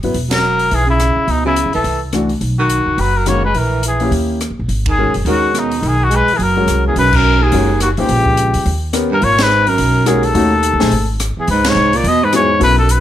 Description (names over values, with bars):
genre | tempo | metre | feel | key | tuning
jazz, small-group swing and bop | 212 BPM | 4/4 | swing 59% on 8ths | G# minor | A4 = 440 Hz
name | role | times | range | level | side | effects
warm baby grand piano | accompaniment | 0.0-12.8 s | D#3 to B#4 | -18 LUFS | left 2 dB | none
upright bass | bass | 0.0-13.0 s | E1 to E2 | -17 LUFS | equal | none
open jazz drum kit | drums | 0.0-13.0 s | crash cymbal, hi-hat, kick drum, ride cymbal, rim click, snare drum | -23 LUFS | left 1 dB | none
warm trumpet | melody | 0.3-13.0 s | D#4 to D#5 | -15 LUFS | left 3 dB | plate reverb
breathy baritone saxophone | second line | 0.3-13.0 s | C#2 to A#3 | -19 LUFS | right 5 dB | none
room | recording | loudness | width
light reverb | none | -12 LUFS | side -12 dB against mid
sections
0.0-7.0 A section; 7.0-13.0 B section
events
band accent 0.3, 4.8, 7.1, 9.4, 11.6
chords
0.2 Esus2; 1.3 C#m7; 1.9 C69; 2.4 Badd9; 3.6 A#m7b5; 4.1 D#7b9; 4.7 G#m9; 6.4 F#; 7.0 Bmaj7; 8.1 A#m; 8.7 D#7b13; 9.2 G#m11; 10.4 D#m7b5; 10.9 N.C.; 11.5 C#m7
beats
| 0.15 0.44 0.72 1.00 | 1.29 1.57 1.86 2.14 | 2.42 2.71 2.99 3.27 | 3.56 3.84 4.12 4.41 | 4.69 4.97 5.26 5.54 | 5.83 6.11 6.39 6.68 | 6.96 7.24 7.53 7.81 | 8.09 8.38 8.66 8.94 | 9.22 9.51 9.79 10.07 | 10.36 10.64 10.92 11.21 | 11.49 11.77 12.05 12.34 | 12.62 12.90